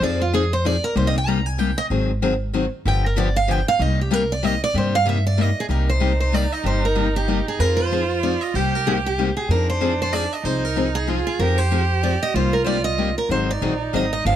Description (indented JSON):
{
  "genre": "acoustic string swing (jazz manouche)",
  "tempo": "190 BPM",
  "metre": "3/4",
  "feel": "swing 59% on 8ths",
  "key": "C minor",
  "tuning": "A4 = 440 Hz",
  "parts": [
    { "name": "picked steel-string acoustic guitar", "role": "melody", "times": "0.0-14.4 s", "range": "F4 to Bb5", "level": "-23 LUFS", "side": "right 2 dB", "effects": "none" },
    { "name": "picked steel-string acoustic guitar", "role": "accompaniment", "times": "0.0-14.4 s", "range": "C3 to Ab4", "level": "-24 LUFS", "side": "left 6 dB", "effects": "none" },
    { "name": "upright bass", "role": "bass", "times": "0.0-14.4 s", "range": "G1 to G2", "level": "-22 LUFS", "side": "equal", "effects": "none" },
    { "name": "warm violin", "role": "second line", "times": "5.7-14.4 s", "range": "D4 to G4", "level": "-26 LUFS", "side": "right 6 dB", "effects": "none" }
  ],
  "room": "little or no reverb",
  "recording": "close, detailed microphones",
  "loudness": "-18 LUFS",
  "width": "side -10 dB against mid",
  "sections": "0.0-5.7 A section; 5.7-14.4 B section",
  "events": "steel-string acoustic guitar solo 0.0-5.7",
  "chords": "0.0 Fm7; 1.0 Cm7; 1.9 Ab7; 2.9 G7; 3.8 Cm7; 7.6 Fm7; 8.5 Cm7; 9.5 Fm7; 12.4 Cm7; 13.3 Ab7"
}